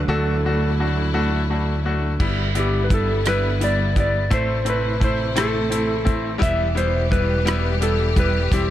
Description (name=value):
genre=six-eight pop ballad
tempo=57 BPM (dotted quarters)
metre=6/8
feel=straight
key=E minor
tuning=A4 = 440 Hz
part: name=clean lap steel guitar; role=melody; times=0.0-8.7 s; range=G4 to E5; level=-24 LUFS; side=equal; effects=digital delay
part: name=rich studio string section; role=sustained chords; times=0.0-8.7 s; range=B2 to G4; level=-28 LUFS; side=right 2 dB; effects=none
part: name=fingered electric bass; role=bass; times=0.0-8.7 s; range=E1 to D2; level=-22 LUFS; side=equal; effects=none
part: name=bright grand piano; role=accompaniment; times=0.1-8.7 s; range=G3 to F#4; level=-25 LUFS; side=left 3 dB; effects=none
part: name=damped 70s drum kit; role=drums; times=2.2-8.7 s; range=crash cymbal, hi-hat, kick drum, rim click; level=-22 LUFS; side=equal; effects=none
room=light reverb, small room ambience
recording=none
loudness=-18 LUFS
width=side -12 dB against mid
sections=0.0-2.2 A section; 2.2-8.7 B section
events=none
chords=0.0 D; 2.2 G6; 4.3 Am; 6.4 Em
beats=| 0.08 1.14 | 2.21 3.27 | 4.32 5.37 | 6.42 7.47 | 8.52